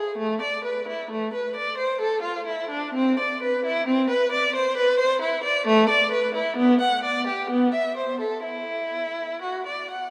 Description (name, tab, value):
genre	classical, baroque-style suite movement for unaccompanied violin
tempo	65 BPM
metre	3/4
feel	uneven beats, rubato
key	unclear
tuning	A4 = 440 Hz
part	rich violin	solo	0.0-10.1 s	A3 to F#5	-24 LUFS	equal	none
room	wet cathedral reverb, RT60 4.2 s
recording	none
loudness	-24 LUFS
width	mono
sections	0.0-10.1 A section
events	none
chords	none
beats	| 0.17 1.09 2.01 | 2.94 3.88 4.78 | 5.67 6.58 7.50 | 8.45 9.42